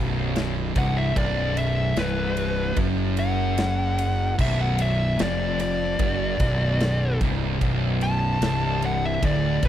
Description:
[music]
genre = stoner and doom metal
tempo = 74 BPM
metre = 4/4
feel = straight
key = unclear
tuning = A4 = 441 Hz
[part]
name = thick fuzz guitar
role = riff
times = 0.0-9.7 s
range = B1 to F#2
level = -24 LUFS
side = equal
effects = distortion
[part]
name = fuzz fingered electric bass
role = bass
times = 0.0-9.7 s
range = B0 to F#1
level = -28 LUFS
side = equal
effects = overdrive
[part]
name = big rock drum kit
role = drums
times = 0.4-9.7 s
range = crash cymbal, kick drum, ride cymbal, snare drum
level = -29 LUFS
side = equal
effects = none
[part]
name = fuzz lead guitar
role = melody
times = 0.8-9.7 s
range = B4 to A5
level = -27 LUFS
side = equal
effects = distortion, slapback echo
[sound]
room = little or no reverb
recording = dry, close 1970s-style studio recording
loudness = -21 LUFS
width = side -11 dB against mid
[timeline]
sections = 0.0-9.7 A section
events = lead electric guitar solo 0.0-9.7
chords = 0.0 Bm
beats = 0.36 | 1.17 1.97 2.78 3.59 | 4.39 5.20 6.01 6.81 | 7.62 8.42 9.23

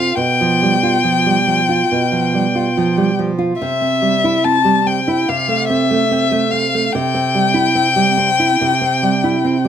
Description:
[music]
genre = romantic duo for violin and classical guitar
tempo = 72 BPM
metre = 4/4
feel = rubato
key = C major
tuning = A4 = 440 Hz
[part]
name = rich violin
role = melody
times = 0.0-9.7 s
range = E5 to A5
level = -16 LUFS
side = left 5 dB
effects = none
[part]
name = nylon-string guitar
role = accompaniment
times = 0.0-9.7 s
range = B2 to F4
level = -16 LUFS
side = right 3 dB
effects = none
[sound]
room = light reverb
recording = close, detailed microphones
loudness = -13 LUFS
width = side -9 dB against mid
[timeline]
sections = 0.0-9.7 A section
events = none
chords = 0.2 G7/B; 3.6 C; 5.3 Fmaj7/C; 6.9 C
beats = | 0.20 1.05 1.90 2.76 | 3.60 4.45 5.29 6.11 | 6.93 7.75 8.59 9.42

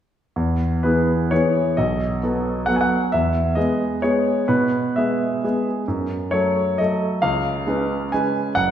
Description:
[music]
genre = classical, piano waltz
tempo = 121-142 BPM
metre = 3/4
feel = rubato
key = E major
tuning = A4 = 440 Hz
[part]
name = clear concert grand piano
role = solo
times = 0.4-8.7 s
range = F#1 to G#5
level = -18 LUFS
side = equal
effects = none
[sound]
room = wet recital hall reverb, RT60 1.7 s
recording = heard from further back in the room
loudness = -18 LUFS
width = side -10 dB against mid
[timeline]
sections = 0.4-8.7 A section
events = none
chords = 0.4 E; 1.8 B7; 3.1 E; 5.9 F#m; 7.2 C#7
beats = | 0.36 0.83 1.31 | 1.77 2.22 2.68 | 3.12 3.57 4.03 | 4.49 4.97 5.44 | 5.89 6.33 6.79 | 7.23 7.67 8.12 | 8.55

